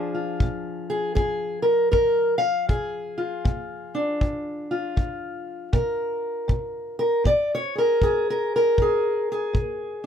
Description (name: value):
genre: acoustic country blues, solo or duo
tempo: 79 BPM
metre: 4/4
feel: swing 64% on 8ths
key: Bb mixolydian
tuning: A4 = 442 Hz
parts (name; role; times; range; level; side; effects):
- fingerpicked steel-string acoustic guitar; melody; 0.0-10.1 s; Bb2 to F5; -22 LUFS; equal; none
- kick drum; drums; 0.4-9.8 s; none; -23 LUFS; equal; none
room: light reverb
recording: none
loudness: -21 LUFS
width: side -8 dB against mid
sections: 0.0-10.1 A section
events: none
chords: 0.0 Bb7